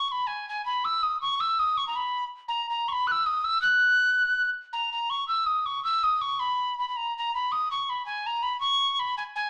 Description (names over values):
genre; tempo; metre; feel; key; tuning
celtic folk; 108 BPM (dotted quarters); 6/8; straight; unclear; A4 = 440 Hz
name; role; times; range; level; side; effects
tin whistle; solo; 0.0-9.5 s; G#5 to F#6; -26 LUFS; equal; none
room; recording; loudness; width
wet studio reverb, RT60 0.9 s; none; -26 LUFS; mono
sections
0.0-4.7 A section; 4.7-9.5 A section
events
none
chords
none